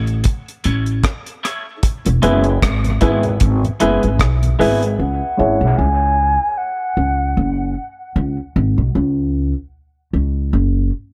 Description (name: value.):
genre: dub reggae.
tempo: 76 BPM.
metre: 4/4.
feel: swing 56% on 16ths.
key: C# minor.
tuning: A4 = 441 Hz.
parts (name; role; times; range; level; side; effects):
electric guitar at the edge of break-up; accompaniment; 0.0-5.6 s; G#3 to E4; -25 LUFS; equal; high-pass filter, low-pass filter, dub echo.
dark upright piano; stabs; 0.0-5.6 s; E4 to C#5; -24 LUFS; equal; high-pass filter, low-pass filter, dub echo.
upright bass; bass; 0.0-10.9 s; E1 to C#2; -19 LUFS; equal; none.
mellow tonewheel organ; accompaniment; 0.1-4.7 s; E2 to E4; -30 LUFS; equal; none.
deep reggae drum kit; drums; 0.1-5.0 s; hi-hat, kick drum, rim click; -21 LUFS; equal; none.
jazz flute; melody; 5.0-7.8 s; F#5 to G#5; -22 LUFS; equal; low-pass filter, dub echo.
room: studio reverb.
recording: none.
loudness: -17 LUFS.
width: mono.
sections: 0.0-5.0 A section; 5.0-11.1 B section.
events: break 0.0-5.0.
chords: 0.0 A; 1.8 E; 5.0 C#5.